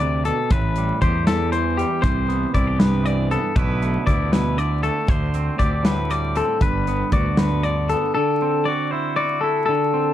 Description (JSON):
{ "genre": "math rock and midwest emo", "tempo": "79 BPM (dotted quarters)", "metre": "6/8", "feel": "straight", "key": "unclear", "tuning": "A4 = 441 Hz", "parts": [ { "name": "twangy electric guitar", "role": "accompaniment", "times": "0.0-10.1 s", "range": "E2 to G4", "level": "-25 LUFS", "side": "right 6 dB", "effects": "plate reverb" }, { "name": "twangy electric guitar", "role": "arpeggios", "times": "0.0-10.1 s", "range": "G4 to D5", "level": "-23 LUFS", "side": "left 5 dB", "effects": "plate reverb" }, { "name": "fuzz fingered electric bass", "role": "bass", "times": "0.0-7.9 s", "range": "G1 to E2", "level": "-23 LUFS", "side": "equal", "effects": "overdrive" }, { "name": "modern studio drum kit", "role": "drums", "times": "0.3-8.0 s", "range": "hi-hat, kick drum, snare drum", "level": "-21 LUFS", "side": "equal", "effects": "none" } ], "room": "light reverb", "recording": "dark, warm production, vinyl crackle", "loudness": "-18 LUFS", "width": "side -12 dB against mid", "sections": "0.0-8.1 A section; 8.1-10.1 B section", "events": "none", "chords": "0.0 D7sus4; 0.5 Am9; 2.0 Cmaj9; 3.6 Asus24/B; 5.1 D7sus4; 6.6 Gmaj9; 8.1 D9", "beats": "| 0.50 1.27 | 2.03 2.79 | 3.56 4.32 | 5.08 5.84 | 6.61 7.37 | 8.13 8.89 | 9.66" }